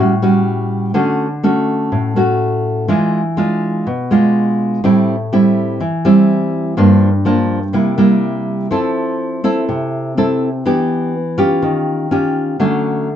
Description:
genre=bossa nova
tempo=124 BPM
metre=4/4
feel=straight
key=A minor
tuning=A4 = 442 Hz
part: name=nylon-string guitar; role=solo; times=0.0-13.2 s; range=G2 to A4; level=-13 LUFS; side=equal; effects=none
room=wet small room reverb, RT60 0.5 s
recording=heard from further back in the room, nothing above 7.8 kHz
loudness=-13 LUFS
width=side -10 dB against mid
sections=0.0-8.7 A section; 8.7-13.2 B section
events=none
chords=0.0 A6; 1.0 Dmaj7; 2.9 E7b9; 4.8 Am7; 6.8 Gm7; 7.7 C7; 8.7 Fmaj7; 10.7 Em7; 11.6 D#9; 12.6 Dmaj7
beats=0.47 | 0.95 1.44 1.92 2.41 | 2.89 3.38 3.86 4.35 | 4.83 5.32 5.80 6.29 | 6.77 7.26 7.74 8.23 | 8.71 9.20 9.68 10.17 | 10.65 11.14 11.62 12.11 | 12.59 13.07

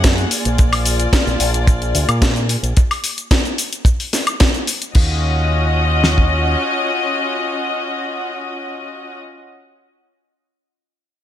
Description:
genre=nu-disco, nu disco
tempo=110 BPM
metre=4/4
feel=straight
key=unclear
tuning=A4 = 439 Hz
part: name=dark studio string section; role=sustained chords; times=0.0-9.1 s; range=Gb3 to Gb5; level=-20 LUFS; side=left 2 dB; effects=sidechain pumping
part: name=fingered electric bass with an envelope filter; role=bass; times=0.0-6.5 s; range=Bb1 to Bb2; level=-18 LUFS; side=equal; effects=none
part: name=damped 70s drum kit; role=drums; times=0.0-6.3 s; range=kick drum, snare drum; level=-14 LUFS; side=equal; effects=none
part: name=house drum kit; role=drums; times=0.0-5.1 s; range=crash cymbal, hi-hat, shaker, snare drum, woodblock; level=-19 LUFS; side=left 1 dB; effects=gated reverb
room=light reverb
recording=bright 1980s-style digital production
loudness=-15 LUFS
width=side -11 dB against mid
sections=0.0-4.9 A section; 4.9-9.3 B section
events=drop 0.0-4.9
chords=0.3 Bb7; 2.8 N.C.; 4.9 Ebm9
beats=0.04 | 0.58 1.13 1.68 2.22 | 2.77 3.31 3.86 4.40 | 4.95 5.49 6.04 6.58 | 7.13 7.67 8.22 8.77

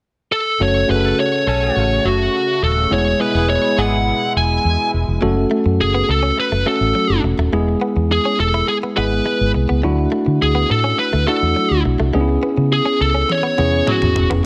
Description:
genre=1980s-style pop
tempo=104 BPM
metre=4/4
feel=straight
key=F# minor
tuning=A4 = 440 Hz
part: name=fuzz lead guitar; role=melody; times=0.3-14.3 s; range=F#4 to G#5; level=-21 LUFS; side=equal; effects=distortion, digital delay
part: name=tine electric piano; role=accompaniment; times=0.6-14.5 s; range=G#3 to A4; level=-22 LUFS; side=equal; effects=none
part: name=sweeping resonant pad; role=sustained chords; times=0.6-5.2 s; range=B2 to F#4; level=-30 LUFS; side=equal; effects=chorus
part: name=vintage muted fingered electric bass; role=bass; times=0.6-14.4 s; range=D#1 to D3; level=-21 LUFS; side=equal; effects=none
part: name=warm horn section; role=stabs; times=1.0-4.0 s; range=E3 to A4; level=-30 LUFS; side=equal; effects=digital delay
part: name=direct-recorded clean electric guitar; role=riff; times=5.2-14.4 s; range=F#3 to E4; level=-29 LUFS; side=equal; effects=analog chorus, digital delay
part: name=electronic toms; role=drums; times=13.3-14.4 s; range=none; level=-24 LUFS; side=equal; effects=overdrive
room=light reverb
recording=none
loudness=-17 LUFS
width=mono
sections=0.6-5.2 A section; 5.2-14.5 B section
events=drum fill 13.3-14.5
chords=0.0 N.C.; 0.6 F#m; 2.9 E; 5.2 F#m; 7.5 E; 9.8 Dadd9; 12.1 C#m7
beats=0.03 | 0.60 1.18 1.76 2.34 | 2.91 3.49 4.07 4.64 | 5.22 5.80 6.38 6.95 | 7.53 8.11 8.68 9.26 | 9.84 10.41 10.99 11.57 | 12.14 12.72 13.30 13.88 | 14.45

